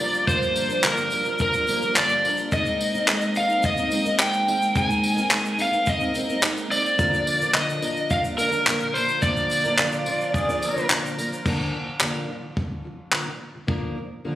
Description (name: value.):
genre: acoustic pop.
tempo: 108 BPM.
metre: 4/4.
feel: straight.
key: unclear.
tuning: A4 = 440 Hz.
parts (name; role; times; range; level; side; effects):
overdriven slide guitar; melody; 0.0-10.9 s; Bb4 to Ab5; -22 LUFS; equal; digital delay.
fingerpicked plugged-in steel-string acoustic guitar; accompaniment; 0.0-14.4 s; G2 to Bb4; -28 LUFS; equal; double-tracked left and right.
tonewheel organ; sustained chords; 0.0-11.4 s; D3 to C5; -31 LUFS; right 1 dB; overdrive, stopped rotary speaker.
compact cocktail drum kit; drums; 0.0-13.8 s; crash cymbal, handclaps, kick drum, tambourine; -25 LUFS; equal; none.
egg shaker; percussion; 0.1-11.5 s; none; -40 LUFS; right 1 dB; none.
pedal steel guitar; second line; 9.8-11.4 s; F4 to Bb4; -31 LUFS; equal; none.
room: light reverb, small room reverb.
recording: recorded on a phone in the room, studio reverb, compression.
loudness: -20 LUFS.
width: side -13 dB against mid.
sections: 0.0-11.5 A section; 11.5-14.4 B section.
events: none.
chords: 0.0 Gm7; 2.5 Abadd9; 7.0 Bb.